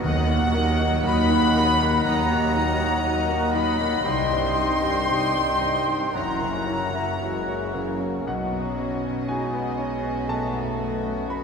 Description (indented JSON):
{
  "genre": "cinematic, emotional film score for orchestra",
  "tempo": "59 BPM",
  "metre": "4/4",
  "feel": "rubato",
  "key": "B mixolydian from 8.3 s",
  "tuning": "A4 = 441 Hz",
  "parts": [
    { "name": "warm symphonic violin section", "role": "melody", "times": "0.0-11.4 s", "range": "C#5 to C6", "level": "-29 LUFS", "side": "left 2 dB", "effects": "none" },
    { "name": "hollow small flute group", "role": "second line", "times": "0.0-7.7 s", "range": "F#5 to C6", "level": "-29 LUFS", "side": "left 1 dB", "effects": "none" },
    { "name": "mellow clarinet", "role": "second line", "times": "0.0-7.9 s", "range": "D#5 to E5", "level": "-32 LUFS", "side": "left 4 dB", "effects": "none" },
    { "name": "mellow cor anglais", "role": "second line", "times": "0.0-7.9 s", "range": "F#5 to G5", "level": "-31 LUFS", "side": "right 2 dB", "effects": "none" },
    { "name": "warm symphonic violin section", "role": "second line", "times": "0.0-11.4 s", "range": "F#4 to F#5", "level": "-34 LUFS", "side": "left 2 dB", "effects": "none" },
    { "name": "clear concert grand piano", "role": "accompaniment", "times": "0.0-11.4 s", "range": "B1 to B5", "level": "-30 LUFS", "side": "left 1 dB", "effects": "none" },
    { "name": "dark symphonic viola section", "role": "accompaniment", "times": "0.0-11.4 s", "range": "D#3 to E4", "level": "-33 LUFS", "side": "right 1 dB", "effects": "none" },
    { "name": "mellow French horn section", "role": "sustained chords", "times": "0.0-11.4 s", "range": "F#3 to E4", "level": "-30 LUFS", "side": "left 3 dB", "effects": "none" },
    { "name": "concert harp", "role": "arpeggios", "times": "0.0-11.4 s", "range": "F#2 to F#5", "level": "-35 LUFS", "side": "left 3 dB", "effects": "none" },
    { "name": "rich symphonic double bass section", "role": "bass", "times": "0.0-11.4 s", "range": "F#1 to D#2", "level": "-30 LUFS", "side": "right 2 dB", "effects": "none" },
    { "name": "warm symphonic cello section", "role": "bass", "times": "0.0-11.4 s", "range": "C2 to B2", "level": "-30 LUFS", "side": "right 2 dB", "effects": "none" },
    { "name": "timpani", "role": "percussion", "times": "0.0-1.5 s", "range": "D#3", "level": "-35 LUFS", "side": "equal", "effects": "none" }
  ],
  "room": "wet church reverb, RT60 2.8 s",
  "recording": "minimal, uncompressed stereo recording",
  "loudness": "-21 LUFS",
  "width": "side -6 dB against mid",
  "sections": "0.0-8.3 A section; 8.3-11.4 B section",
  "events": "none",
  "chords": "0.0 D#m; 4.1 Cm; 6.1 F#7; 8.3 Bsus2"
}